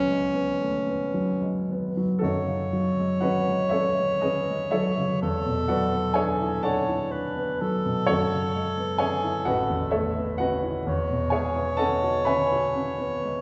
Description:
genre	classical, impressionist duo for alto saxophone and grand piano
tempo	36-44 BPM (dotted quarters)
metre	6/8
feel	rubato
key	F# dorian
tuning	A4 = 441 Hz
part	clear alto saxophone	melody	0.0-13.4 s	C#4 to C#5	-30 LUFS	equal	none
part	warm baby grand piano	accompaniment	0.0-13.4 s	A1 to B5	-27 LUFS	equal	none
room	wet recital hall reverb, RT60 1.8 s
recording	heard from further back in the room, nothing above 8.0 kHz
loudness	-25 LUFS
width	mono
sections	0.0-2.2 A section; 2.2-13.4 B section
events	none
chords	0.0 C#7sus4; 2.2 F#madd9; 5.2 E9sus4; 8.1 F#m11; 9.5 A69; 10.9 E69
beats	0.59 | 2.21 3.72 | 5.21 6.63 | 8.07 9.46 | 10.86 12.26

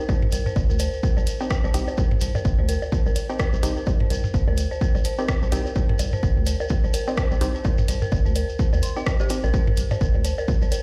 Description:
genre	minimal techno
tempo	127 BPM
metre	4/4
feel	swing 58% on 16ths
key	C minor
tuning	A4 = 439 Hz
part	dark detuned synth bell	riff	0.0-10.8 s	G4 to C6	-33 LUFS	equal	chorus, sidechain pumping, delay
part	rubbery square bass	bass	0.1-10.7 s	G1 to Eb2	-26 LUFS	equal	sidechain pumping
part	electronic kick drum	drums	0.1-10.6 s	none	-25 LUFS	equal	none
part	electronic bongos, toms and woodblock	percussion	0.1-10.8 s	none	-33 LUFS	equal	delay
part	shekere	percussion	0.1-10.8 s	none	-40 LUFS	equal	none
part	house drum kit	drums	0.3-10.8 s	hi-hat, rim click	-34 LUFS	equal	none
part	filtered dub chord stab	stabs	1.4-9.4 s	C4 to G4	-34 LUFS	equal	chorus, cassette tape, delay
room	little or no reverb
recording	played on a big sound system in a bare room, stone room reverb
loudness	-22 LUFS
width	mono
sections	0.0-10.8 A section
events	none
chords	0.0 C5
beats	| 0.09 0.56 1.03 1.50 | 1.98 2.45 2.92 3.40 | 3.87 4.34 4.81 5.29 | 5.76 6.23 6.70 7.17 | 7.65 8.12 8.59 9.06 | 9.54 10.01 10.48

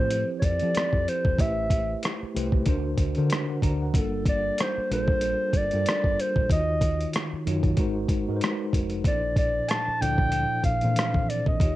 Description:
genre	R&B, neo-soul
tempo	94 BPM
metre	4/4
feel	swing 57% on 16ths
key	unclear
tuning	A4 = 439 Hz
part	dark clarinet	melody	0.0-11.8 s	A4 to A5	-26 LUFS	equal	cassette tape
part	mellow tine electric piano	accompaniment	0.0-11.8 s	Bb2 to Bb5	-29 LUFS	equal	medium stereo tremolo
part	deep dub fingered electric bass	bass	0.0-11.8 s	E1 to F3	-30 LUFS	equal	none
part	dusty soul sampler-style drum kit	drums	0.1-11.8 s	hi-hat, kick drum, rim click	-25 LUFS	equal	overdrive
room	little or no reverb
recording	home recording on cassette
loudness	-22 LUFS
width	side -16 dB against mid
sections	0.0-11.8 A section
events	none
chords	0.0 Fmaj9; 1.4 Am7; 2.7 D7b13; 3.9 Gm9; 6.5 Ebm7; 7.8 Ab9; 9.0 Bbmaj9#11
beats	0.11 0.75 | 1.38 2.02 2.66 3.30 | 3.94 4.58 5.21 5.85 | 6.49 7.13 7.77 8.41 | 9.04 9.68 10.32 10.96 | 11.60

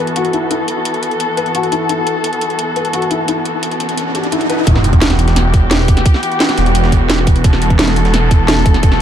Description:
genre	dark technical drum and bass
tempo	173 BPM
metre	4/4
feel	straight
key	E minor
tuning	A4 = 438 Hz
part	muted chamber string section	sustained chords	0.0-9.0 s	E3 to A4	-18 LUFS	left 1 dB	sidechain pumping
part	felt-muted upright piano	arpeggios	0.0-4.6 s	E4 to B4	-20 LUFS	left 5 dB	sidechain pumping, ping-pong delay
part	drum and bass drum kit	drums	0.1-9.0 s	hi-hat, snare drum	-18 LUFS	right 1 dB	none
part	riser and sub drop	sound effects	3.3-6.1 s	none	-20 LUFS	equal	none
part	phased detuned saw bass	bass	4.7-9.0 s	E1	-14 LUFS	equal	phaser, overdrive, sidechain pumping
part	breakbeat sampler-style drum kit	drums	4.7-9.0 s	hi-hat, snare drum	-27 LUFS	right 1 dB	none
part	electronic kick drum	drums	4.7-8.9 s	none	-11 LUFS	equal	none
room	light reverb, digital ambience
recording	none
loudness	-11 LUFS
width	side -10 dB against mid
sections	0.0-4.7 A section; 4.7-9.0 B section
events	riser 3.3-4.7; drop 4.7-9.0; impact 4.7-6.1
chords	0.0 Esus2; 4.7 Emadd9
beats	0.16 | 0.51 0.85 1.20 1.55 | 1.89 2.24 2.59 2.94 | 3.28 3.63 3.98 4.32 | 4.67 5.01 5.36 5.71 | 6.06 6.40 6.75 7.10 | 7.44 7.79 8.14 8.48 | 8.83

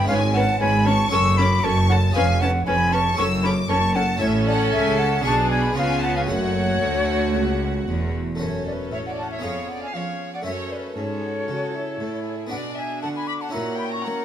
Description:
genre	classical, baroque-style concerto movement with solo episodes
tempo	116 BPM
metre	4/4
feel	straight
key	F# minor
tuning	A4 = 440 Hz
part	concert flute	melody	0.0-14.2 s	C#5 to D6	-25 LUFS	left 1 dB	none
part	rich chamber violin section	melody	0.0-14.2 s	F#4 to E6	-30 LUFS	left 3 dB	none
part	warm chamber violin section	second line	0.0-14.2 s	E#4 to B5	-29 LUFS	left 2 dB	none
part	harpsichord	accompaniment	0.0-14.2 s	C#2 to B4	-30 LUFS	equal	none
part	rich chamber viola section	accompaniment	0.0-14.2 s	A3 to F#4	-30 LUFS	right 2 dB	none
part	rich chamber cello section	bass	0.0-14.2 s	C#2 to A#3	-26 LUFS	right 1 dB	none
part	rich chamber double bass section	bass	0.0-8.4 s	E1 to D2	-25 LUFS	right 2 dB	none
room	moderate recital hall reverb, RT60 1.5 s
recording	none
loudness	-19 LUFS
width	side -10 dB against mid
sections	0.0-8.4 A section; 8.4-14.2 B section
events	none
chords	0.1 C#7/G#; 1.1 F#m; 2.1 C#7/E#; 3.2 F#m; 4.2 A; 5.2 G#dim/B; 5.8 C#7; 6.3 F#m; 9.4 C#7/E#; 10.5 F#m; 12.5 Bm; 13.5 F#7/A#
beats	| 0.10 0.61 1.12 1.63 | 2.15 2.66 3.18 3.69 | 4.21 4.73 5.25 5.77 | 6.29 6.82 7.35 7.88 | 8.40 8.92 9.44 9.95 | 10.47 10.98 11.49 12.01 | 12.52 13.03 13.54 14.05

